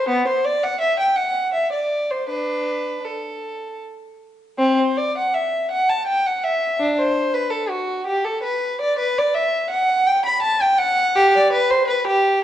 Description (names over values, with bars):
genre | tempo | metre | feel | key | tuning
classical, baroque-style suite movement for unaccompanied violin | 74-85 BPM | 3/4 | rubato | G major | A4 = 441 Hz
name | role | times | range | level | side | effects
dark violin | solo | 0.0-12.4 s | B3 to B5 | -18 LUFS | equal | none
room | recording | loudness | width
moderate recital hall reverb, RT60 1.4 s | dark, warm production, nothing above 10.6 kHz | -17 LUFS | side -11 dB against mid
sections
0.0-4.6 A section; 4.6-12.4 B section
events
none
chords
none